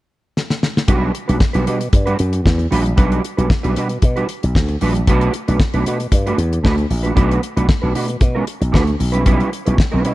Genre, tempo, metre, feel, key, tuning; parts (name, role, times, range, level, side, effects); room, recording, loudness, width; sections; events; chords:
disco; 115 BPM; 4/4; straight; A4 = 440 Hz
damped 70s drum kit; drums; 0.4-10.1 s; hi-hat, kick drum, snare drum; -17 LUFS; equal
mellow electric guitar; accompaniment; 0.9-10.1 s; G3 to B4; -21 LUFS; right 3 dB; analog chorus
slap bass with an envelope filter; bass; 0.9-10.1 s; A#1 to B2; -18 LUFS; equal
small room ambience; dark, warm production; -14 LUFS; side -17 dB against mid
0.9-10.1 A section
drum fill 0.4-0.9
0.0 N.C.; 0.9 Em9 (rootless); 5.1 Gmaj9 (rootless); 9.0 A9 (rootless)